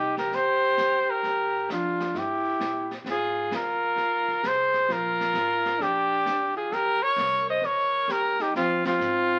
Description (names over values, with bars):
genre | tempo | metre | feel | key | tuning
jazz, small-group swing and bop | 131 BPM | 4/4 | swing 67% on 8ths | Eb mixolydian | A4 = 440 Hz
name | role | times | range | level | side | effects
clear trumpet | melody | 0.0-9.4 s | F4 to Eb5 | -26 LUFS | equal | none
clear alto saxophone | second line | 0.0-9.4 s | C4 to C5 | -34 LUFS | equal | none
upright bass | bass | 0.0-9.4 s | Ab1 to Bb2 | -44 LUFS | equal | none
jazz brush drum kit | drums | 0.2-9.4 s | brushed snare drum, hi-hat, kick drum, ride cymbal, snare drum | -42 LUFS | equal | none
room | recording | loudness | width
moderate studio reverb, RT60 0.8 s | very old 78 rpm record, vinyl crackle | -25 LUFS | mono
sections
0.0-9.4 A section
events
band accent 8.8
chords
0.0 Eb7; 1.2 Gm7; 2.1 Gm6; 3.1 Fm7; 4.9 Bb7; 6.7 Eb5; 8.5 Fm